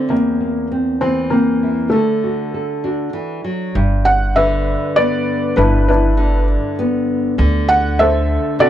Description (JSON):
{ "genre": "acoustic folk-pop ballad", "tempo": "99 BPM", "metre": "3/4", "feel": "straight", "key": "G major", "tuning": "A4 = 438 Hz", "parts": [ { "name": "felt-muted upright piano", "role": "melody", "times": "0.0-8.7 s", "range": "A3 to F#5", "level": "-16 LUFS", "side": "left 1 dB", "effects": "none" }, { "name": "nylon-string guitar", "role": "accompaniment", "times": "0.0-8.7 s", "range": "E2 to A4", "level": "-20 LUFS", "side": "equal", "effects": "none" }, { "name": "upright bass", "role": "bass", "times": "3.8-8.4 s", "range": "G1 to D2", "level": "-17 LUFS", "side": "equal", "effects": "none" } ], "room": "small room ambience", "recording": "dry, close 1970s-style studio recording", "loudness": "-14 LUFS", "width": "side -11 dB against mid", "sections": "0.0-3.7 A section; 3.7-8.7 B section", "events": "none", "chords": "0.1 C7/E; 1.9 Dadd9; 3.7 G6; 7.4 D7" }